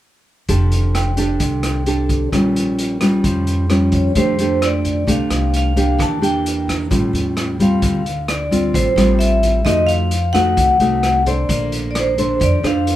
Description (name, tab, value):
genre	bossa nova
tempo	131 BPM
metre	4/4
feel	straight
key	F major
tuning	A4 = 439 Hz
part	nylon-string guitar	accompaniment	0.5-13.0 s	A2 to C5	-18 LUFS	equal	none
part	upright bass	bass	0.5-13.0 s	F1 to F2	-20 LUFS	equal	none
part	vintage drum kit	drums	0.5-13.0 s	hi-hat, kick drum, rim click	-23 LUFS	equal	none
part	tine electric piano	accompaniment	1.0-2.3 s	G5	-30 LUFS	right 3 dB	medium stereo tremolo
part	vibraphone with medium hard mallets	melody	3.9-13.0 s	C5 to A5	-19 LUFS	left 1 dB	none
room	moderate studio ambience, RT60 0.4 s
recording	band playing live in one room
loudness	-14 LUFS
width	side -13 dB against mid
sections	0.5-4.2 A section; 4.2-13.0 B section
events	none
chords	0.5 F69; 2.3 Bbm6; 4.2 F69; 6.0 Em7b5; 6.9 A7b13; 7.8 Dm11; 9.7 F7b9; 11.5 Bbmaj9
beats	| 0.49 0.94 1.40 1.86 | 2.32 2.78 3.24 3.70 | 4.16 4.62 5.07 5.53 | 5.99 6.45 6.91 7.37 | 7.82 8.28 8.74 9.20 | 9.66 10.12 10.57 11.03 | 11.49 11.95 12.41 12.86